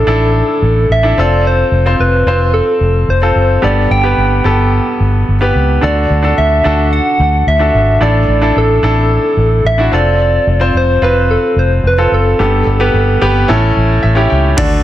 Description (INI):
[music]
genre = piano-driven pop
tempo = 110 BPM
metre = 4/4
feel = straight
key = unclear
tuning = A4 = 439 Hz
[part]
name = soft struck synth lead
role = melody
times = 0.0-14.8 s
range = A4 to G5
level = -14 LUFS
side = equal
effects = chorus, tremolo
[part]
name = bright baby grand piano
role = accompaniment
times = 0.0-14.8 s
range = G2 to G5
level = -14 LUFS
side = equal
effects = none
[part]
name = vintage muted fingered electric bass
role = bass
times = 0.1-14.8 s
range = F1 to D2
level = -13 LUFS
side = equal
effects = none
[part]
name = booming analog drum machine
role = drums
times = 14.6-14.7 s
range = crash cymbal, hi-hat, kick drum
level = -13 LUFS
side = equal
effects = none
[sound]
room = moderate large studio reverb, RT60 1.2 s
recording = dense, heavily limited modern master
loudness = -9 LUFS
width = side -13 dB against mid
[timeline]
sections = 0.0-14.6 A section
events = grand piano fill 13.8-14.6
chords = 0.0 Asus4; 1.2 F; 3.6 Gadd9; 5.8 D; 8.0 Asus4; 9.9 F; 12.4 Gadd9; 13.5 A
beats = 0.34 0.89 | 1.44 1.99 2.53 3.08 | 3.63 4.18 4.72 5.27 | 5.82 6.37 6.92 7.46 | 8.01 8.56 9.11 9.65 | 10.20 10.75 11.30 11.84 | 12.39 12.94 13.48 14.03 | 14.57